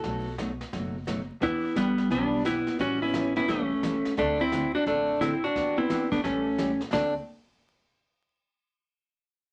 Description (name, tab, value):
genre	country, western swing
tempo	174 BPM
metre	4/4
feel	swing 64% on 8ths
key	D major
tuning	A4 = 440 Hz
part	clean lap steel guitar	melody	0.0-7.1 s	G3 to A4	-28 LUFS	equal	none
part	picked steel-string acoustic guitar	accompaniment	0.0-7.1 s	B2 to A4	-38 LUFS	equal	none
part	upright bass	bass	0.0-7.1 s	E1 to E2	-43 LUFS	equal	none
part	vintage brush drum kit	drums	0.0-7.2 s	brushed snare drum, hi-hat, kick drum, snare drum	-41 LUFS	equal	none
part	vintage hollow-body jazz guitar	second line	1.4-7.1 s	G3 to D4	-37 LUFS	equal	none
room	moderate studio ambience, RT60 0.5 s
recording	vinyl crackle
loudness	-27 LUFS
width	mono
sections	0.0-6.9 A section; 6.9-8.3 B section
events	none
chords	0.0 B7; 1.4 Em7; 2.8 A9; 4.2 D9; 5.6 Em7; 6.2 A7; 6.9 D7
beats	| 0.04 0.39 0.73 1.07 | 1.42 1.76 2.11 2.45 | 2.80 3.14 3.49 3.83 | 4.17 4.52 4.86 5.21 | 5.55 5.90 6.24 6.59 | 6.93